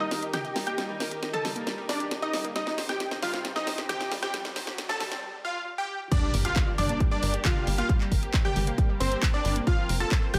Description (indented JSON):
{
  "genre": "uplifting trance",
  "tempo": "135 BPM",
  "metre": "4/4",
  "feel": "straight",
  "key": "G minor",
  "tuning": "A4 = 442 Hz",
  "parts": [
    { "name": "supersaw stab", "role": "melody", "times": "0.0-10.4 s", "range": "C4 to A5", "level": "-34 LUFS", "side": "equal", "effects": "cassette tape, sidechain pumping, low-pass filter, delay" },
    { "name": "clear grand piano", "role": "second line", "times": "0.0-10.4 s", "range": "C6 to A6", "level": "-39 LUFS", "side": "equal", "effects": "sidechain pumping, low-pass filter, delay" },
    { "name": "warm studio string section", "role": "sustained chords", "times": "0.0-10.4 s", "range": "C3 to Bb4", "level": "-41 LUFS", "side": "equal", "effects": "sidechain pumping" },
    { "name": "unison pluck", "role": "arpeggios", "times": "0.0-10.4 s", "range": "F3 to Eb5", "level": "-40 LUFS", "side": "equal", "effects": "sidechain pumping, delay" },
    { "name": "riser and impact", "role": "sound effects", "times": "1.9-7.9 s", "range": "none", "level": "-42 LUFS", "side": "equal", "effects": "none" },
    { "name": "tight sequencer bass", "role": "bass", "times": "0.1-10.4 s", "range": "F1 to Eb2", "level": "-32 LUFS", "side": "equal", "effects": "sidechain pumping, high-pass filter" },
    { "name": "house drum kit", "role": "drums", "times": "0.1-10.4 s", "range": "crash cymbal, handclaps, hi-hat, snare drum, toms", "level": "-35 LUFS", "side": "equal", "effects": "none" },
    { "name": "electronic kick drum", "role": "drums", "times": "6.1-10.2 s", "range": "none", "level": "-27 LUFS", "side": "equal", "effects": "none" }
  ],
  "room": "light reverb",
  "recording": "high-pass filter",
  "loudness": "-28 LUFS",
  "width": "mono",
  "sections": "0.0-6.1 A section; 6.1-10.4 B section",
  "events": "build-up 0.0-6.1; drum fill 0.0-5.2; filter sweep on supersaw synth 0.0-6.1; drop 6.1-10.4; impact 6.1-7.9",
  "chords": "0.0 Eb; 2.6 Cm; 6.1 Gm; 9.7 N.C."
}